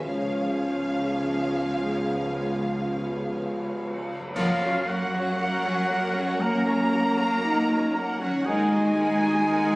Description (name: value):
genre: cinematic, emotional film score for orchestra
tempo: 55-59 BPM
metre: 4/4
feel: rubato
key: F# major from 4.4 s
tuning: A4 = 440 Hz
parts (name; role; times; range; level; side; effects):
- rich studio violin section; melody; 0.0-9.7 s; C#5 to F#5; -36 LUFS; equal; none
- warm French horn; melody; 0.0-3.2 s; C#4; -30 LUFS; equal; none
- rich studio violin section; second line; 0.0-9.8 s; C#5 to A#5; -35 LUFS; equal; none
- clear studio viola section; accompaniment; 0.0-9.7 s; E#3 to A#4; -33 LUFS; equal; none
- concert harp; arpeggios; 0.0-9.8 s; F#2 to G#5; -40 LUFS; left 2 dB; none
- rich studio cello section; bass; 0.0-9.8 s; C#2 to A#3; -29 LUFS; equal; none
- rich studio double bass section; bass; 0.0-9.8 s; C#2 to F#2; -34 LUFS; right 1 dB; none
- cymbal swell, clash cymbals and concert bass drum; percussion; 0.0-6.4 s; none; -38 LUFS; equal; none
- mellow French horn section; sustained chords; 0.1-9.8 s; B3 to E#4; -29 LUFS; equal; none
- bright concert flute; second line; 4.4-9.8 s; E#5 to A#5; -28 LUFS; equal; none
- clear oboe; second line; 4.4-9.8 s; E#4 to A#4; -33 LUFS; right 1 dB; none
room: moderate scoring stage reverb, RT60 1.8 s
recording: recorded on a phone in the room, studio ambience, compression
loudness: -23 LUFS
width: side -22 dB against mid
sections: 0.0-4.4 A section; 4.4-9.8 B section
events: band accent 4.4-5.4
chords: 0.0 C#7; 4.4 F#; 8.5 D#m